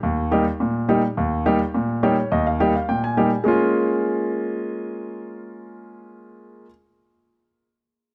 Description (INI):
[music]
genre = dancehall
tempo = 105 BPM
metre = 4/4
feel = straight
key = Bb dorian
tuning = A4 = 442 Hz
[part]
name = warm baby grand piano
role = solo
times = 0.0-6.7 s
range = Eb2 to Ab5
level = -22 LUFS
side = equal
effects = none
[sound]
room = light reverb, small room ambience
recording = none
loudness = -21 LUFS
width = mono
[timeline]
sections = 0.0-3.5 A section; 3.5-5.7 B section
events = grand piano fill 1.7-3.5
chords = 0.0 Eb; 3.5 Bbm7